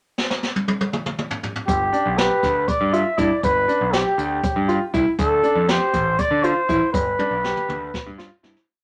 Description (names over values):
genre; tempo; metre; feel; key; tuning
progressive instrumental, band music in an uneven meter; 240 BPM (eighths); 7/8; straight; G mixolydian; A4 = 439 Hz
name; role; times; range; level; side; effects
jazz brush drum kit; drums; 0.2-8.7 s; hi-hat, kick drum, snare drum, toms; -27 LUFS; equal; none
dark trumpet; melody; 1.7-8.1 s; G4 to E5; -23 LUFS; equal; none
growling picked electric bass; bass; 1.7-8.5 s; G1 to D3; -28 LUFS; equal; overdrive
bright concert grand piano; arpeggios; 1.9-8.6 s; D4 to G4; -25 LUFS; equal; none
room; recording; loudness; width
moderate studio reverb, RT60 0.5 s; none; -21 LUFS; mono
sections
0.0-1.7 pickup bar; 1.7-8.7 A section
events
drum fill 0.2-1.7, 7.2-8.7; fade-out 6.9-8.7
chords
0.0 N.C.; 1.7 G; 5.2 Dm; 6.9 G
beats
0.17 0.42 0.68 0.93 1.18 1.43 | 1.68 1.93 2.18 2.43 2.68 2.93 3.18 | 3.43 3.68 3.93 4.18 4.43 4.68 4.94 | 5.19 5.44 5.69 5.94 6.19 6.44 6.69 | 6.94 7.19 7.44 7.69 7.93 8.18 8.43